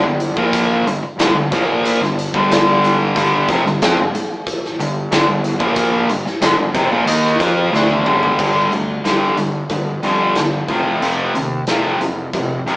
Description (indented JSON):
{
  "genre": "classic rock",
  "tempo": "92 BPM",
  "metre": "4/4",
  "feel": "straight",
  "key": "G minor",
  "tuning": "A4 = 440 Hz",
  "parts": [
    { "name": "overdriven electric guitar", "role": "riff", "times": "0.0-12.8 s", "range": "F2 to F4", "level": "-18 LUFS", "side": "left 1 dB", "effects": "none" },
    { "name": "overdriven electric guitar", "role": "riff", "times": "0.0-12.8 s", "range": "F2 to F4", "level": "-20 LUFS", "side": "right 1 dB", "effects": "none" },
    { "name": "fuzz picked electric bass", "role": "bass", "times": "0.0-12.8 s", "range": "F1 to F2", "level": "-23 LUFS", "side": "equal", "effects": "overdrive" },
    { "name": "big rock drum kit", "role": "drums", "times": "0.2-12.8 s", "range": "crash cymbal, hi-hat, kick drum, snare drum, toms", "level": "-20 LUFS", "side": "equal", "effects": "none" }
  ],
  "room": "moderate studio reverb, RT60 0.8 s",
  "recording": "band playing live in one room, small speaker sound",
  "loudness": "-14 LUFS",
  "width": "side -22 dB against mid",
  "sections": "0.0-8.4 A section; 8.4-12.8 B section",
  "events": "drum fill 7.7-8.4",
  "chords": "0.0 Gm; 8.4 G5; 10.7 F5",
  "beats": "| 0.54 1.19 1.84 2.50 | 3.15 3.81 4.46 5.11 | 5.77 6.42 7.08 7.73 | 8.39 9.05 9.71 10.36 | 11.02 11.68 12.34"
}